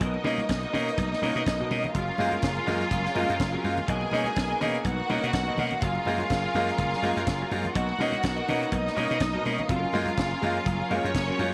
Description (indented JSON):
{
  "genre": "disco",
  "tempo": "124 BPM",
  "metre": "4/4",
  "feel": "swing 56% on 16ths",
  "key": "F# major",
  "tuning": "A4 = 441 Hz",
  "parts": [
    { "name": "clear studio string section", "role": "second line", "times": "0.0-11.5 s", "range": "C#4 to G#5", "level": "-32 LUFS", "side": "equal", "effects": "none" },
    { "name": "clean electric guitar", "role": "accompaniment", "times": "0.0-11.5 s", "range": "C#4 to E#5", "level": "-41 LUFS", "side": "equal", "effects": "none" },
    { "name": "clear baby grand piano", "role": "accompaniment", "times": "0.0-11.5 s", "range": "B2 to E#4", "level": "-33 LUFS", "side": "equal", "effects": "none" },
    { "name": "rich studio string section", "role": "sustained chords", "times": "0.0-11.5 s", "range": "F#3 to A#4", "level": "-37 LUFS", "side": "equal", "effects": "none" },
    { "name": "slap bass", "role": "bass", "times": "0.0-11.5 s", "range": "F#1 to B2", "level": "-33 LUFS", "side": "equal", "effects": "none" },
    { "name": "tight funk drum kit", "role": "drums", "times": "0.0-11.5 s", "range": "hi-hat, kick drum, snare drum", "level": "-36 LUFS", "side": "equal", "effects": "none" },
    { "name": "congas", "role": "percussion", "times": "0.0-11.5 s", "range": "none", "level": "-41 LUFS", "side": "equal", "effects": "none" }
  ],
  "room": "light reverb, small room ambience",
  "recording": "none",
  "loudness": "-27 LUFS",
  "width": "mono",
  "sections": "0.0-11.5 A section",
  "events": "none",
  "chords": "0.0 Bmaj7; 1.9 F#maj7; 3.9 Bmaj7; 5.8 F#maj7; 7.8 Bmaj7; 9.7 F#maj7",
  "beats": "| 0.01 0.49 0.98 1.46 | 1.95 2.43 2.92 3.40 | 3.88 4.37 4.85 5.34 | 5.82 6.30 6.79 7.27 | 7.76 8.24 8.72 9.21 | 9.69 10.18 10.66 11.14"
}